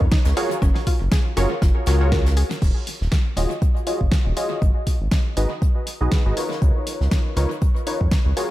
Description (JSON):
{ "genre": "deep house", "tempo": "120 BPM", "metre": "4/4", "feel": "swing 56% on 16ths", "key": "Eb minor", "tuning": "A4 = 439 Hz", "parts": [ { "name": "round analog bass", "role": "bass", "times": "0.0-8.3 s", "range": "Eb1 to F2", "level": "-20 LUFS", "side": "equal", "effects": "sidechain pumping" }, { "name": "electronic kick drum", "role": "drums", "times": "0.0-8.2 s", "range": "none", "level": "-19 LUFS", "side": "equal", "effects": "none" }, { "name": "mallet-like synth pluck", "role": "arpeggios", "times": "0.1-2.4 s", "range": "Db4 to Bb4", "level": "-33 LUFS", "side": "left 4 dB", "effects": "chorus, sidechain pumping, analog delay" }, { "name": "deep house drum kit", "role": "drums", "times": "0.1-8.5 s", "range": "crash cymbal, hi-hat, snare drum", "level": "-28 LUFS", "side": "equal", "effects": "analog delay" }, { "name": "soft brush drum kit", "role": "drums", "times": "0.1-8.5 s", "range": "hi-hat, snare drum", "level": "-40 LUFS", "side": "left 2 dB", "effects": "sidechain pumping on hats, high-pass filter on hats, high-pass filter on snare, high-pass filter on room, analog delay" }, { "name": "warm analog keys", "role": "stabs", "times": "0.4-8.5 s", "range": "Eb4 to Eb5", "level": "-26 LUFS", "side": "equal", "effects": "chorus, sidechain pumping, low-pass filter, analog delay" } ], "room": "digital ambience", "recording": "echo-heavy mix", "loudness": "-18 LUFS", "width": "side -16 dB against mid", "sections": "0.0-2.6 A section; 2.6-8.5 B section", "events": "drop 0.0-2.6; drum fill 2.1-2.6; filter sweep on synth keys 2.6-8.5", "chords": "0.4 Gbmaj9; 2.6 Ebm11; 4.6 Abm7; 6.6 Db13" }